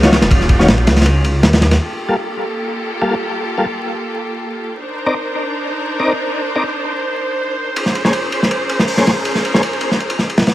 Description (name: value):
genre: drum and bass, jungle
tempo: 161 BPM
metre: 4/4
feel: swing 53% on 16ths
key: G minor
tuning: A4 = 440 Hz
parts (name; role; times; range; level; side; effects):
- rich symphonic string section; sustained chords; 0.0-10.5 s; Gb3 to C5; -20 LUFS; right 1 dB; none
- tonewheel organ; stabs; 0.0-9.6 s; Eb3 to D5; -20 LUFS; left 1 dB; chorus vibrato, dub echo
- detuned saw bass; bass; 0.0-1.8 s; Eb1 to Eb2; -14 LUFS; equal; none
- crunchy breakbeat drum kit; drums; 0.0-1.8, 7.8-10.5 s; hi-hat, kick drum, ride cymbal, snare drum; -14 LUFS; equal; none
room: light reverb, small room ambience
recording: vinyl crackle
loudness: -14 LUFS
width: side -14 dB against mid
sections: 0.0-1.8 A section; 1.8-10.5 B section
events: kick drops out 1.1-1.8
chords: 0.0 Ebm9; 1.8 Gm9; 4.8 Cm9; 7.8 Bbm9